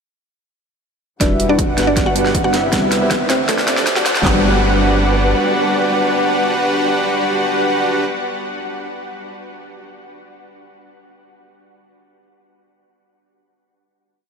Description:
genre	future bass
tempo	158 BPM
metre	4/4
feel	half-time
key	G major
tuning	A4 = 440 Hz
part	mallet-like synth pluck	melody	1.2-8.6 s	A3 to G5	-22 LUFS	equal	chorus, sidechain pumping, diffuse ambient delay
part	mellow tine electric piano	accompaniment	1.2-8.6 s	G3 to D5	-22 LUFS	right 1 dB	analog chorus, sidechain pumping, diffuse ambient delay
part	dark symphonic string section	sustained chords	1.2-8.0 s	C3 to F#5	-27 LUFS	left 2 dB	none
part	airy dreamy lead	arpeggios	1.2-8.0 s	D5 to F#5	-24 LUFS	equal	chorus, sidechain pumping, diffuse ambient delay
part	big bright polysynth	riff	1.2-8.0 s	C4 to F#5	-20 LUFS	equal	sidechain pumping, diffuse ambient delay
part	saturated sub bass	bass	1.2-5.3 s	E1 to D2	-22 LUFS	equal	tube saturation, sidechain pumping
part	big-room dance drum kit	drums	1.2-4.3 s	handclaps, kick drum	-20 LUFS	equal	none
part	pop drum kit	drums	1.2-4.2 s	hi-hat, snare drum	-22 LUFS	equal	overdrive, high-pass filter on snare, high-pass filter on hats, high-pass filter on room
part	riser	sound effects	2.7-4.2 s	none	-27 LUFS	left 1 dB	none
room	wet huge ambient reverb, RT60 6.7 s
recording	dreamy mix soaked in reverb, high-pass filter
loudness	-14 LUFS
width	side -6 dB against mid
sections	1.2-4.2 build; 4.2-7.3 final chord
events	build-up 1.2-4.2; drum fill 1.2-4.2; filter sweep on analog polysynth 1.2-4.2; filter sweep 1.2-4.2; riser 2.7-4.2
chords	1.2 Em9; 1.8 Gmaj7; 2.7 Cmaj7; 3.3 D7sus4; 4.2 Gmaj7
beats	| 1.21 1.59 1.97 2.35 | 2.73 3.11 3.49 3.87 | 4.25 4.63 5.00 5.38 | 5.76 6.14 6.52 6.90

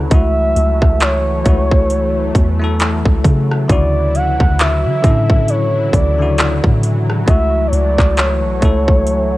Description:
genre	contemporary R&B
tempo	67 BPM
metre	4/4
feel	swing 58% on 16ths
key	unclear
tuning	A4 = 436 Hz
part	bell-like tine electric piano	accompaniment	0.0-9.4 s	C#3 to A4	-21 LUFS	left 3 dB	fast stereo tremolo, cassette tape
part	lush unison pad	sustained chords	0.0-9.4 s	E3 to E4	-24 LUFS	equal	chorus, phaser, sidechain pumping, cassette tape
part	soft 808-style bass	bass	0.0-9.4 s	B1 to D3	-16 LUFS	equal	none
part	gliding portamento lead	melody	0.1-9.4 s	C#5 to F#5	-18 LUFS	equal	chorus
part	trap drum kit	drums	0.1-9.3 s	handclaps, hi-hat, kick drum, rim click	-14 LUFS	equal	overdrive, cassette tape
room	digital ambience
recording	home recording on cassette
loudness	-12 LUFS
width	side -17 dB against mid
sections	0.0-9.4 A section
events	none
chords	0.1 F#m7/C#; 3.7 Dmaj9; 7.3 F#m7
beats	| 0.11 1.01 1.90 2.80 | 3.69 4.59 5.49 6.38 | 7.28 8.17 9.07

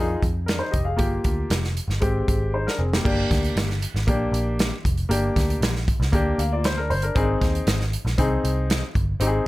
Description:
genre	uptempo 1960s-style soul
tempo	117 BPM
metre	4/4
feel	straight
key	unclear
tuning	A4 = 440 Hz
part	warm upright piano	accompaniment	0.0-9.5 s	Ab3 to F5	-25 LUFS	left 1 dB	plate reverb
part	vintage muted picked electric bass	bass	0.0-9.4 s	F1 to F2	-24 LUFS	equal	none
part	natural country drum kit	drums	0.2-9.3 s	crash cymbal, hi-hat, kick drum, snare drum	-24 LUFS	equal	none
room	little or no reverb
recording	none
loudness	-20 LUFS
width	side -18 dB against mid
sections	0.0-3.1 A section; 3.1-9.5 B section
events	drum fill 2.5-3.1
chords	0.0 Fm7; 1.0 Gm7; 2.0 Abmaj7; 3.1 Gm; 7.2 Ab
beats	0.48 | 1.00 1.51 2.03 2.54 | 3.06 3.57 4.08 4.60 | 5.11 5.62 6.13 6.65 | 7.16 7.67 8.18 8.70 | 9.21

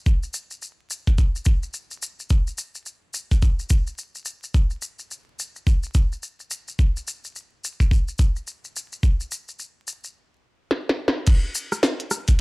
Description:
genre	glitch hop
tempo	107 BPM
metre	4/4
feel	swing 61% on 16ths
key	none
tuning	none
part	electronic kick drum	drums	0.1-12.4 s	none	-18 LUFS	equal	none
part	maracas	percussion	0.1-12.4 s	none	-32 LUFS	left 2 dB	none
part	glitchy drum kit	drums	10.7-12.4 s	crash cymbal, hi-hat, rim click, snare drum	-23 LUFS	equal	low-pass filter on snare, low-pass filter on hats, low-pass filter on cymbals
room	digital ambience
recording	dry, gritty hardware recording, vinyl crackle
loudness	-21 LUFS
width	side -28 dB against mid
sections	0.0-11.3 A section; 11.3-12.4 B section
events	drum fill 10.7-11.3; drop 11.3-12.4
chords	none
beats	| 0.06 0.62 1.18 1.74 | 2.30 2.86 3.42 3.98 | 4.54 5.11 5.67 6.23 | 6.79 7.35 7.91 8.47 | 9.03 9.59 10.15 10.71 | 11.27 11.84

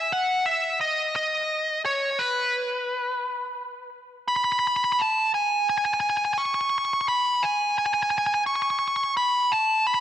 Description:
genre	rock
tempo	58 BPM (dotted quarters)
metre	6/8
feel	straight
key	unclear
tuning	A4 = 439 Hz
part	nasal lead guitar with a parked wah	melody	0.0-10.0 s	B4 to C#6	-22 LUFS	equal	overdrive, tape echo
room	moderate lush hall reverb, RT60 2.6 s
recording	none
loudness	-22 LUFS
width	side -11 dB against mid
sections	0.0-4.3 A section; 4.3-10.0 B section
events	build-up 4.3-10.0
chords	none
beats	| 0.11 1.15 | 2.20 3.24 | 4.29 5.33 | 6.37 7.42 | 8.46 9.50

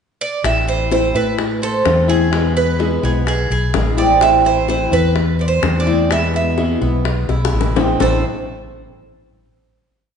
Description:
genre	latin, Cuban son and guajira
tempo	127 BPM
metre	4/4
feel	straight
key	A harmonic minor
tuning	A4 = 440 Hz
part	Cuban tres	melody	0.2-8.2 s	G#4 to E5	-20 LUFS	right 4 dB	none
part	flamenco guitar	accompaniment	0.4-8.2 s	A2 to E4	-21 LUFS	left 4 dB	none
part	fretless electric bass	bass	0.4-8.2 s	A1 to A2	-19 LUFS	equal	none
part	bongos	percussion	0.4-8.1 s	none	-23 LUFS	left 5 dB	none
part	Cuban tres	arpeggios	0.7-8.2 s	A3 to C5	-20 LUFS	right 5 dB	none
room	wet recital hall reverb, RT60 1.6 s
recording	recorded in a church or concert hall, nothing above 10.3 kHz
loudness	-14 LUFS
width	side -7 dB against mid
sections	0.0-0.4 pickup bar; 0.4-8.0 verse; 8.0-9.9 final chord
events	drum fill 7.3-8.0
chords	0.4 Am; 2.3 E; 4.2 Am; 6.1 E; 8.0 A5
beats	| 0.44 0.92 1.39 1.86 | 2.33 2.80 3.27 3.74 | 4.21 4.68 5.16 5.63 | 6.11 6.58 7.06 7.53 | 8.01

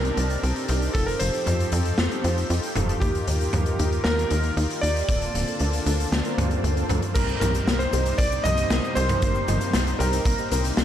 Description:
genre	synthwave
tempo	116 BPM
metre	4/4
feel	straight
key	C dorian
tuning	A4 = 440 Hz
part	clear electric grand piano	melody	0.0-10.8 s	G4 to Eb5	-29 LUFS	equal	ping-pong delay
part	soft supersaw	sustained chords	0.0-10.8 s	C3 to A5	-32 LUFS	equal	sidechain pumping
part	mellow synth brass	stabs	0.0-10.8 s	Bb3 to A5	-32 LUFS	left 1 dB	chorus, ping-pong delay
part	tight sequencer bass	bass	0.0-10.8 s	D1 to F2	-24 LUFS	equal	sidechain pumping
part	raw garage drum kit	drums	0.0-10.8 s	cabasa, crash cymbal, hi-hat, snare drum, toms	-27 LUFS	equal	gated reverb
part	kick drum	drums	0.9-10.4 s	none	-28 LUFS	equal	none
part	swell	sound effects	6.3-7.2 s	none	-34 LUFS	left 2 dB	none
part	airy dreamy lead	second line	7.1-10.8 s	Bb5 to Eb6	-33 LUFS	equal	chorus
part	warbly dusty pluck	arpeggios	7.2-10.8 s	Bb3 to C5	-34 LUFS	left 3 dB	chorus, ping-pong delay
room	studio ambience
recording	none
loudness	-21 LUFS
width	side -10 dB against mid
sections	0.0-7.2 A section; 7.2-10.8 B section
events	swell 6.3-7.2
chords	0.0 Cmadd9; 0.9 F7; 3.0 Ebadd9; 5.1 Bbmaj7/D; 7.2 Cm7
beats	0.43 | 0.95 1.47 1.98 2.50 | 3.02 3.54 4.05 4.57 | 5.09 5.60 6.12 6.64 | 7.16 7.67 8.19 8.71 | 9.22 9.74 10.26 10.78

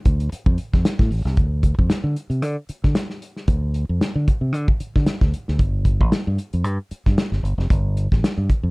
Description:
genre	funk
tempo	114 BPM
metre	4/4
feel	swing 56% on 16ths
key	unclear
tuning	A4 = 440 Hz
part	fingered electric bass	bass	0.1-8.7 s	F1 to D3	-21 LUFS	equal	none
part	warm soul drum kit	drums	0.1-8.6 s	hi-hat, kick drum, snare drum	-19 LUFS	equal	none
room	little or no reverb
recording	dark, warm production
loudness	-18 LUFS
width	side -29 dB against mid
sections	0.0-1.4 A section; 1.4-8.7 B section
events	none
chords	none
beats	0.32 0.84 | 1.37 1.90 2.42 2.95 | 3.48 4.01 4.54 5.06 | 5.59 6.12 6.64 7.17 | 7.70 8.22

